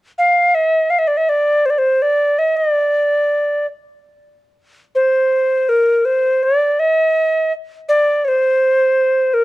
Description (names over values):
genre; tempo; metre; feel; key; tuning
arabic; 82 BPM; 4/4; straight; D maqam bayati; A4 = 440 Hz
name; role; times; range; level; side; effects
alto recorder; solo; 0.2-9.4 s; Bb4 to F5; -13 LUFS; equal; none
room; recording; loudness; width
studio reverb; dry, close 1970s-style studio recording; -13 LUFS; side -18 dB against mid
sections
0.0-4.9 A section; 4.9-9.4 B section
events
none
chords
none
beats
0.54 1.28 | 2.01 2.74 3.48 4.21 | 4.95 5.68 6.41 7.15 | 7.88 8.62 9.35